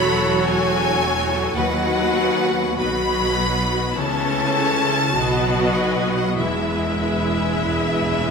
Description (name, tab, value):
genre	classical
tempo	46-54 BPM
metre	4/4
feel	rubato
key	unclear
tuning	A4 = 441 Hz
part	bright symphonic violin section	melody	0.0-8.3 s	E5 to B5	-24 LUFS	left 3 dB	none
part	rich chamber violin section	second line	0.0-8.3 s	A4 to E5	-25 LUFS	left 2 dB	none
part	rich studio viola section	accompaniment	0.0-8.3 s	E3 to F#4	-23 LUFS	right 1 dB	none
part	concert harp	arpeggios	0.0-8.3 s	B2 to C#5	-28 LUFS	left 6 dB	none
part	rich studio cello section	bass	0.0-8.3 s	D#2 to C#3	-27 LUFS	right 2 dB	none
part	rich studio double bass section	bass	0.0-8.3 s	E1 to D#2	-28 LUFS	right 4 dB	none
part	timpani	percussion	6.4-8.3 s	E2	-32 LUFS	right 1 dB	none
room	wet scoring stage reverb, RT60 1.6 s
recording	minimal, uncompressed stereo recording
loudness	-18 LUFS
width	side -5 dB against mid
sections	0.0-8.3 A section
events	timpani fill 6.4-8.3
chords	0.0 F#m7/E; 1.6 B/D#; 4.0 A/C#; 5.1 B7; 6.4 E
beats	0.45 | 1.56 2.79 3.96 5.13 | 6.37 7.65